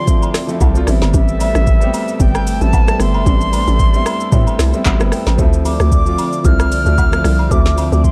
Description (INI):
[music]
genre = amapiano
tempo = 113 BPM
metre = 4/4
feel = swing 55% on 16ths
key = D dorian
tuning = A4 = 439 Hz
[part]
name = bright concert flute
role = melody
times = 0.0-8.1 s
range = E5 to F6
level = -24 LUFS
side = equal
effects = digital delay
[part]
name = warm baby grand piano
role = accompaniment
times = 0.0-8.1 s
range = F3 to B5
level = -23 LUFS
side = equal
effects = none
[part]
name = airy breathy pad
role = sustained chords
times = 0.0-8.1 s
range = D3 to E5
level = -28 LUFS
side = equal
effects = chorus, phaser, sidechain pumping
[part]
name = afro-pop drum kit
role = drums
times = 0.1-8.1 s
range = handclaps, hi-hat, kick drum, rim click, shaker, snare drum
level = -18 LUFS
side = equal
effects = none
[part]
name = agogo bells and woodblock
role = percussion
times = 0.2-7.9 s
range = none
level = -32 LUFS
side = equal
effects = none
[part]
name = hollow log drum bass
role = bass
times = 0.6-8.1 s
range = G1 to A2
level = -17 LUFS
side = equal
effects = none
[sound]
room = digital ambience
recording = dark, warm production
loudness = -14 LUFS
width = mono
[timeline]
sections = 0.0-8.1 A section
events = grand piano fill 0.3-1.1, 4.6-5.4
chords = 0.0 Dm9; 0.9 Am9; 5.4 Dm9